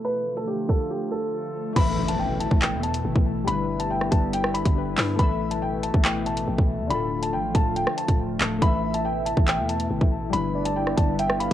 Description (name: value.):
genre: hip hop, drill.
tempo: 140 BPM.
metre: 4/4.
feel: half-time.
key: unclear.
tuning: A4 = 440 Hz.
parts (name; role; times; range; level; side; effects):
dark concert grand piano; melody; 0.0-11.5 s; G4 to B5; -28 LUFS; left 1 dB; cassette tape, tape echo.
warbly tape-like pad; sustained chords; 0.0-11.5 s; B2 to F4; -30 LUFS; left 1 dB; chorus, built-in reverb, cassette tape.
drill drum kit; drums; 0.0-11.5 s; crash cymbal, handclaps, hi-hat, kick drum, rim click; -23 LUFS; equal; cassette tape.
warbly lo-fi synth keys; accompaniment; 1.7-11.5 s; D3 to E5; -31 LUFS; left 9 dB; chorus, cassette tape.
growling 808-style bass; bass; 1.8-11.5 s; D1 to G2; -30 LUFS; equal; none.
impact; sound effects; 1.8-3.5 s; none; -33 LUFS; equal; none.
soft octave-layered synth lead; second line; 8.6-11.5 s; D5 to F5; -30 LUFS; right 10 dB; chorus, cassette tape, tape echo.
room: digital ambience.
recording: home recording on cassette, low-pass filter.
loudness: -21 LUFS.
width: side -12 dB against mid.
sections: 0.0-1.8 A section; 1.8-11.5 B section.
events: filter sweep 0.0-1.8; break 0.9-1.8; impact 1.8-3.5.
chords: 0.0 Dm; 1.8 Asus2; 3.5 G6; 5.2 Asus2; 6.9 Dm; 8.6 Asus2; 10.3 G6.